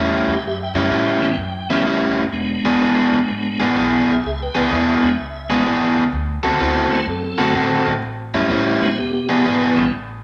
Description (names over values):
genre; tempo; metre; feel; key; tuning
electric blues shuffle; 126 BPM; 4/4; swing 67% on 8ths; unclear; A4 = 440 Hz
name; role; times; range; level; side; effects
overdriven electric guitar; riff; 0.0-9.8 s; A2 to A4; -19 LUFS; equal; spring reverb
upright bass; bass; 0.0-10.2 s; E1 to A2; -31 LUFS; equal; none
tonewheel organ; accompaniment; 0.3-9.9 s; A2 to G5; -25 LUFS; equal; slow rotary speaker, overdrive, chorus vibrato
room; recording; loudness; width
wet studio reverb, RT60 0.7 s; none; -18 LUFS; mono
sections
0.0-9.9 A section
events
none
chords
0.0 A7; 2.3 E7; 6.1 D7; 8.0 A7; 9.0 E7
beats
| 0.44 0.92 1.39 1.86 | 2.34 2.81 3.29 3.76 | 4.23 4.71 5.18 5.66 | 6.13 6.61 7.08 7.55 | 8.03 8.51 8.98 9.46 | 9.93